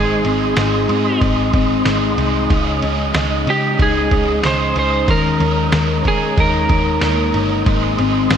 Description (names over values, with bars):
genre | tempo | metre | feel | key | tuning
dream pop | 93 BPM | 4/4 | straight | Ab major | A4 = 439 Hz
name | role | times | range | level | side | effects
electric slide guitar | melody | 0.0-7.3 s | G4 to C5 | -20 LUFS | right 2 dB | digital delay
overdriven electric guitar | accompaniment | 0.0-8.4 s | Ab2 to Bb4 | -24 LUFS | right 5 dB | harmonic tremolo, wide subtle chorus
mellow tonewheel organ | sustained chords | 0.0-8.4 s | Ab3 to Eb6 | -22 LUFS | right 1 dB | chorus vibrato, fast rotary speaker
mellow electric guitar | arpeggios | 0.0-8.4 s | Ab2 to Bb4 | -20 LUFS | left 6 dB | wide subtle chorus, digital delay
vintage muted picked electric bass | bass | 0.0-8.4 s | G1 to Eb3 | -21 LUFS | right 1 dB | none
vibraphone with soft mallets | texture | 0.0-8.0 s | Bb3 to Ab4 | -28 LUFS | left 1 dB | digital delay
lo-fi sampler-style drum kit | drums | 0.2-8.4 s | kick drum, ride cymbal, snare drum, tambourine | -21 LUFS | right 1 dB | none
room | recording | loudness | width
moderate lush hall reverb, RT60 1.7 s | bright 1980s-style digital production | -14 LUFS | side -8 dB against mid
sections
0.0-8.4 A section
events
none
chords
0.0 Ab; 2.5 Dbsus2; 5.1 Eb7sus4; 7.7 Ab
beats
0.57 1.21 1.86 | 2.50 3.15 3.79 4.44 | 5.08 5.73 6.38 7.02 | 7.67 8.31